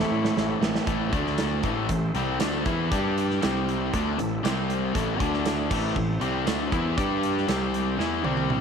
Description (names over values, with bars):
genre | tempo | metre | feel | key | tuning
classic rock | 118 BPM | 4/4 | straight | A minor | A4 = 439 Hz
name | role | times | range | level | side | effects
raspy tenor saxophone | melody | 0.0-0.6 s | A3 | -35 LUFS | equal | tape echo
dark smooth lead guitar | second line | 0.0-0.6 s | E4 | -41 LUFS | right 10 dB | none
picked steel-string acoustic guitar | accompaniment | 0.0-0.9 s | A2 to A4 | -39 LUFS | left 9 dB | none
overdriven tonewheel organ | sustained chords | 0.0-8.6 s | G3 to D5 | -37 LUFS | equal | none
cranked stack guitar | riff | 0.0-8.6 s | A2 to G4 | -28 LUFS | left 12 dB | overdrive
overdriven semi-hollow guitar | riff | 0.0-8.6 s | A2 to G4 | -30 LUFS | right 11 dB | none
fuzz picked electric bass | bass | 0.0-8.6 s | A1 to A2 | -30 LUFS | equal | overdrive
big rock drum kit | drums | 0.2-8.6 s | crash cymbal, hi-hat, kick drum, snare drum, tambourine, toms | -30 LUFS | right 3 dB | none
room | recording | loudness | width
light reverb, small room ambience | 1960s-style stereo with parts hard left and right | -23 LUFS | side -6 dB against mid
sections
0.9-8.6 A section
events
drum fill 0.0-0.9, 8.0-8.6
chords
0.0 Am; 0.9 A5; 1.1 D5; 1.6 Am; 2.9 G5; 3.4 C5; 3.9 Am; 4.4 C5; 4.9 A5; 5.2 D5; 5.7 Am; 7.0 G5; 7.5 C5; 8.0 E5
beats
0.37 | 0.87 1.38 1.89 2.40 | 2.90 3.41 3.92 4.43 | 4.93 5.44 5.95 6.46 | 6.96 7.47 7.98 8.49